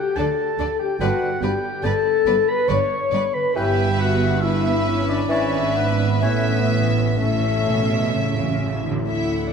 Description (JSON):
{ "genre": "classical, slow romantic movement for symphony orchestra", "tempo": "62-73 BPM", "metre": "3/4", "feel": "rubato", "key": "unclear", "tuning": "A4 = 440 Hz", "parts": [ { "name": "warm oboe", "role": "second line", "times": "0.0-8.6 s", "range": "A4 to C#6", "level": "-29 LUFS", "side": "right 2 dB", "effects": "none" }, { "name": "mellow French horn section", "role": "sustained chords", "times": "0.0-9.5 s", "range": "A3 to C#5", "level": "-23 LUFS", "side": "left 4 dB", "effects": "none" }, { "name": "concert harp", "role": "arpeggios", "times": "0.0-9.5 s", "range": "G2 to E6", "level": "-31 LUFS", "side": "left 9 dB", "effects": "none" }, { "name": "warm symphonic violin section", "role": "melody", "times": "0.2-9.5 s", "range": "D5 to F#5", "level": "-30 LUFS", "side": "left 4 dB", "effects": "none" }, { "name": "warm studio violin section", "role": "second line", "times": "0.2-9.5 s", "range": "A4 to E5", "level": "-30 LUFS", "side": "left 1 dB", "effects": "none" }, { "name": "dark symphonic viola section", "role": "accompaniment", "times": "0.2-9.5 s", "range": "B3 to E4", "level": "-31 LUFS", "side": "right 1 dB", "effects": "none" }, { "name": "warm symphonic cello section", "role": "bass", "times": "0.2-9.5 s", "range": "D2 to D3", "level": "-26 LUFS", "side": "right 4 dB", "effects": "none" }, { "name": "warm symphonic double bass section", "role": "bass", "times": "0.2-9.5 s", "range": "G1 to D2", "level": "-26 LUFS", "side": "right 5 dB", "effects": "none" }, { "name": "mellow concert flute", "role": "second line", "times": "1.0-6.7 s", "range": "E5 to G5", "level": "-34 LUFS", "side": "left 3 dB", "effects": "none" }, { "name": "warm clarinet", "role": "second line", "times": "1.0-6.6 s", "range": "B4 to D5", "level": "-34 LUFS", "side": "equal", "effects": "none" }, { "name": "mellow bassoon", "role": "accompaniment", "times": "1.0-6.6 s", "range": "D3 to E3", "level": "-31 LUFS", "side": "right 2 dB", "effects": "none" }, { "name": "timpani", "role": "percussion", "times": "6.2-9.1 s", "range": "A2", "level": "-28 LUFS", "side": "right 1 dB", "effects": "none" } ], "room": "wet scoring stage reverb, RT60 2.1 s", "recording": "none", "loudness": "-18 LUFS", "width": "side -6 dB against mid", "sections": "0.0-9.1 A section", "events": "timpani fill 6.2-9.1", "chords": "0.0 D5; 1.0 G; 3.6 Em/G; 5.3 E7/G#; 6.2 A" }